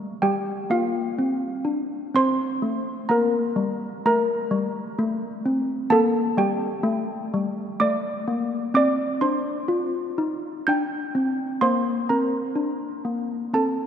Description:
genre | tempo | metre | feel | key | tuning
classical, tune for handbells | 64 BPM | 3/4 | straight | unclear | A4 = 442 Hz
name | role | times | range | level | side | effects
malleted handbells | solo | 0.0-13.9 s | G3 to G6 | -22 LUFS | equal | none
room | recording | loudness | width
wet church reverb, RT60 3.9 s | dark, warm production | -22 LUFS | side -8 dB against mid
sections
0.0-13.9 A section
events
none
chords
0.3 Gm; 8.8 Cm; 11.6 Bbadd9

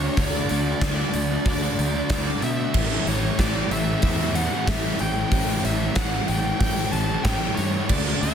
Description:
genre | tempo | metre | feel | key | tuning
rock, shoegaze and dream pop | 93 BPM | 4/4 | straight | A mixolydian | A4 = 435 Hz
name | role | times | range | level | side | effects
bluesy overdriven lead guitar | melody | 0.0-8.3 s | C#5 to A5 | -29 LUFS | equal | distortion, tape echo
string machine, cellos | sustained chords | 0.0-8.3 s | D4 to C#6 | -36 LUFS | equal | none
crunchy overdriven guitar | riff | 0.0-8.3 s | A2 to G4 | -29 LUFS | right 12 dB | reverse reverb
thick fuzz guitar | riff | 0.0-8.3 s | A2 to D4 | -29 LUFS | left 10 dB | distortion, analog chorus
fuzz fingered electric bass | bass | 0.0-8.3 s | A1 to B2 | -27 LUFS | equal | overdrive
tambourine | percussion | 0.0-8.3 s | none | -46 LUFS | left 10 dB | none
gated 80s drum kit | drums | 0.2-8.3 s | crash cymbal, hi-hat, kick drum, snare drum | -26 LUFS | equal | none
biting overdriven guitar | riff | 2.7-8.3 s | A2 to D4 | -32 LUFS | left 2 dB | none
room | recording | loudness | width
small room reverb | dense, heavily limited modern master | -20 LUFS | side -8 dB against mid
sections
0.0-8.3 A section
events
none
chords
0.0 D; 2.8 A5

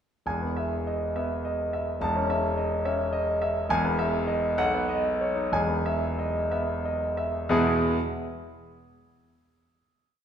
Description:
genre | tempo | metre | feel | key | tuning
classical, virtuoso piano study | 60-72 BPM (dotted quarters) | 6/8 | rubato | E major | A4 = 440 Hz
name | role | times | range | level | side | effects
clear concert grand piano | solo | 0.3-8.0 s | E1 to A5 | -24 LUFS | equal | none
room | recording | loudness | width
wet recital hall reverb, RT60 1.7 s | recorded in a church or concert hall | -24 LUFS | side -8 dB against mid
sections
0.3-7.5 A section; 7.5-9.4 final chord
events
slowing down 2.9-7.5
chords
0.3 E; 2.0 A/E; 3.7 E; 4.6 B; 5.5 E

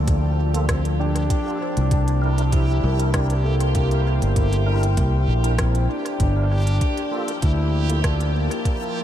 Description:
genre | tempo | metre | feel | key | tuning
ambient dub | 98 BPM | 4/4 | swing 53% on 16ths | unclear | A4 = 440 Hz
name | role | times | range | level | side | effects
dark trombone | melody | 0.0-9.0 s | Bb3 to E4 | -28 LUFS | equal | dub echo
deep dark ambient pad | sustained chords | 0.0-9.0 s | F3 to A5 | -29 LUFS | left 1 dB | chorus, built-in reverb
felt-muted upright piano | arpeggios | 0.0-9.0 s | Bb3 to A5 | -35 LUFS | left 2 dB | none
fingered electric bass | bass | 0.0-8.5 s | G1 to D2 | -20 LUFS | equal | none
backwards swelling texture | texture | 0.0-9.0 s | G4 | -32 LUFS | right 2 dB | built-in reverb
electronic kick drum | drums | 0.1-8.8 s | none | -22 LUFS | equal | studio reverb
organic electronic drum kit | drums | 0.1-8.8 s | hi-hat, rim click | -34 LUFS | equal | studio reverb, dub echo
tonewheel organ | stabs | 0.5-8.0 s | Bb3 to Bb4 | -34 LUFS | right 2 dB | overdrive, chorus vibrato, slow rotary speaker, dub echo
room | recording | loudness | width
light reverb | none | -18 LUFS | side -11 dB against mid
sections
0.0-9.0 A section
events
none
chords
0.0 Gm9; 1.3 C7; 6.2 Gm9

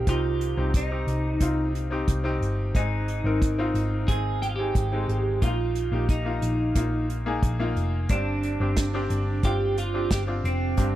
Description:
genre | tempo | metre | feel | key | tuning
piano-driven pop | 90 BPM | 4/4 | straight | C minor | A4 = 440 Hz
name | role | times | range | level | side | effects
twelve-string electric guitar | melody | 0.0-11.0 s | C4 to Ab4 | -29 LUFS | right 2 dB | none
bright upright piano | accompaniment | 0.0-11.0 s | G2 to G5 | -30 LUFS | left 3 dB | none
vintage muted picked electric bass | bass | 0.0-11.0 s | F1 to C2 | -27 LUFS | equal | none
unplugged drum kit | drums | 0.1-10.9 s | hi-hat, kick drum, snare drum | -25 LUFS | equal | none
room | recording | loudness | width
small room reverb | dry, close 1970s-style studio recording | -23 LUFS | side -13 dB against mid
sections
0.0-11.0 A section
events
none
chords
0.0 Cm; 2.7 Ab; 5.4 Bbsus4; 8.1 Gsus4

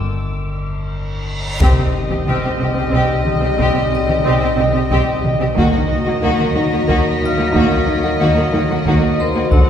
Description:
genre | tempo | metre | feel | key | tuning
cinematic, suspense film score | 91 BPM | 3/4 | straight | unclear | A4 = 436 Hz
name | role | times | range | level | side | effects
metallic inharmonic drone | drone | 0.0-9.7 s | G1 to Eb2 | -24 LUFS | left 1 dB | chorus, built-in reverb
reverse cymbal and impact | sound effects | 0.8-3.6 s | none | -29 LUFS | equal | none
vibraphone with hard mallets | texture | 0.0-9.7 s | C5 to F6 | -27 LUFS | equal | none
warm chamber violin section | texture | 0.0-1.2, 5.6-9.7 s | A5 to B6 | -31 LUFS | left 2 dB | none
warm symphonic violin section | melody | 1.6-9.7 s | Eb5 to F#5 | -24 LUFS | left 1 dB | none
warm studio violin section | second line | 1.6-9.7 s | Gb4 to G4 | -24 LUFS | left 2 dB | none
warm symphonic viola section | accompaniment | 1.6-9.7 s | Bb3 to D4 | -22 LUFS | right 1 dB | none
dark French horn section | sustained chords | 1.6-9.7 s | F#3 to Eb4 | -26 LUFS | left 3 dB | none
evolving wavetable pad | sustained chords | 2.1-9.7 s | Gb4 to G5 | -25 LUFS | left 1 dB | chorus, built-in reverb
rich symphonic cello section | riff | 1.6-9.7 s | C3 to Eb3 | -23 LUFS | right 1 dB | none
rich studio cello section | bass | 1.6-9.7 s | C3 to Eb3 | -26 LUFS | right 1 dB | none
warm symphonic double bass section | bass | 1.6-9.7 s | C2 to Eb2 | -24 LUFS | right 1 dB | none
taiko ensemble | drums | 1.6-9.7 s | none | -20 LUFS | left 1 dB | none
room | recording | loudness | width
wet concert hall reverb, RT60 2.2 s | heard from further back in the room | -14 LUFS | side -9 dB against mid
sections
0.0-1.6 A section; 1.6-9.7 B section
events
break 0.0-1.6; reverse cymbal 0.8-1.6; drum fill 1.1-1.6; impact 1.6-3.6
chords
0.0 G5; 1.6 Cm; 5.6 Ebm

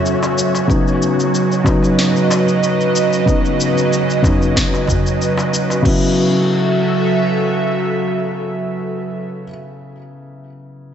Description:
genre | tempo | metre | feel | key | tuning
organic downtempo | 93 BPM | 4/4 | straight | F# dorian | A4 = 438 Hz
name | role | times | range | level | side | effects
felt-muted upright piano | accompaniment | 0.0-10.9 s | C#3 to E4 | -19 LUFS | left 3 dB | sidechain pumping, low-pass filter, tape echo
airy breathy pad | sustained chords | 0.0-9.2 s | F#3 to E5 | -17 LUFS | right 3 dB | chorus, sidechain pumping
wind-like tuned noise texture | texture | 0.0-5.9 s | C#4 to C#5 | -26 LUFS | equal | built-in reverb
afro-pop drum kit | drums | 0.1-6.0 s | cabasa, crash cymbal, snare drum | -24 LUFS | left 1 dB | studio ambience
darbuka | percussion | 0.2-5.8 s | none | -23 LUFS | left 1 dB | none
electronic kick drum | drums | 0.7-6.0 s | none | -18 LUFS | equal | studio ambience
room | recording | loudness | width
moderate echo chamber reverb, RT60 2.7 s | echo-heavy mix, nothing above 8.0 kHz | -14 LUFS | side -9 dB against mid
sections
0.0-5.9 A section; 5.9-8.4 B section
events
filter sweep on felt piano 0.0-5.9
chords
0.0 F#m7; 0.7 C#9sus4; 5.9 F#m7

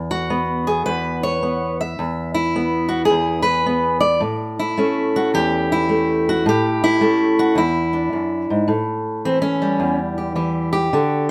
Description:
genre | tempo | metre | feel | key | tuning
acoustic country blues, solo or duo | 107 BPM | 4/4 | swing 66% on 8ths | A mixolydian | A4 = 440 Hz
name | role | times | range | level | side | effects
fingerpicked steel-string acoustic guitar | solo | 0.0-11.3 s | E2 to E5 | -19 LUFS | equal | none
room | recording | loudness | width
moderate stone room reverb, RT60 1.1 s | band playing live in one room | -19 LUFS | mono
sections
0.0-8.7 A section; 8.7-11.3 B section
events
steel-string acoustic guitar solo 8.7-11.3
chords
0.0 E; 4.2 A7; 7.6 E7; 8.7 A7

